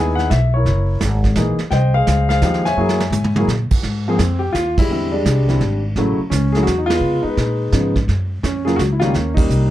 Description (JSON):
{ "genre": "jazz piano trio", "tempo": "170 BPM", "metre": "3/4", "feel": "swing 65% on 8ths", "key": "unclear", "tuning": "A4 = 440 Hz", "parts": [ { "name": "warm concert grand piano", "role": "melody", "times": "0.0-9.7 s", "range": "C#3 to G#5", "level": "-18 LUFS", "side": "left 1 dB", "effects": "none" }, { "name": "upright bass", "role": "bass", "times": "0.0-9.7 s", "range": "Gb1 to Db3", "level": "-18 LUFS", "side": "equal", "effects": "none" }, { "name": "vintage brush drum kit", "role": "drums", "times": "0.2-9.7 s", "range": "brushed snare drum, crash cymbal, hi-hat, kick drum, ride cymbal, snare drum, toms", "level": "-22 LUFS", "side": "right 2 dB", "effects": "none" } ], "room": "little or no reverb", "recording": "dark, warm production", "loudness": "-15 LUFS", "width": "side -13 dB against mid", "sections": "0.0-3.8 A section; 3.8-9.7 B section", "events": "drum fill 2.8-3.5; band accent 4.7, 6.8, 9.3", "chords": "0.0 Emaj7; 0.7 Gb9; 1.7 Fm9; 2.8 Gb9; 3.8 Ab6; 4.9 E7alt; 6.0 A6; 7.0 Db9; 8.1 Gbmaj7; 9.1 Eb7", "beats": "0.31 | 0.67 1.02 1.37 | 1.73 2.08 2.43 | 2.78 3.14 3.49 | 3.84 4.20 4.55 | 4.90 5.26 5.61 | 5.96 6.32 6.67 | 7.02 7.38 7.73 | 8.08 8.44 8.79 | 9.14 9.50" }